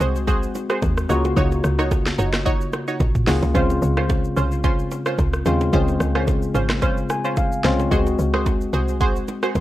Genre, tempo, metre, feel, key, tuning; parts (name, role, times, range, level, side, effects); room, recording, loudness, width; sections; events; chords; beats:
amapiano; 110 BPM; 4/4; swing 55% on 16ths; Db major; A4 = 440 Hz
tine electric piano; accompaniment; 0.0-9.6 s; Db3 to Ab5; -23 LUFS; left 2 dB
punchy chord stab; stabs; 0.0-9.5 s; Db4 to Db5; -26 LUFS; right 2 dB; chorus, phaser, ping-pong delay
woody log drum bass; bass; 0.0-9.6 s; Gb1 to Eb2; -23 LUFS; equal
afro-pop drum kit; drums; 0.0-9.6 s; hi-hat, kick drum, rim click, shaker, snare drum, toms; -23 LUFS; equal
congas and bongos; percussion; 0.3-9.6 s; -32 LUFS; right 6 dB
digital ambience; worn, warbling old tape, cassette tape, warbly pitch drift; -18 LUFS; side -15 dB against mid
0.0-9.6 A section
tine electric piano fill 6.8-7.9
0.0 Ab7; 1.1 Ebm7; 3.6 Dbmaj7; 7.9 Ab7
0.28 0.82 | 1.37 1.91 2.46 3.00 | 3.55 4.10 4.64 5.19 | 5.73 6.28 6.82 7.37 | 7.91 8.46 9.01 9.55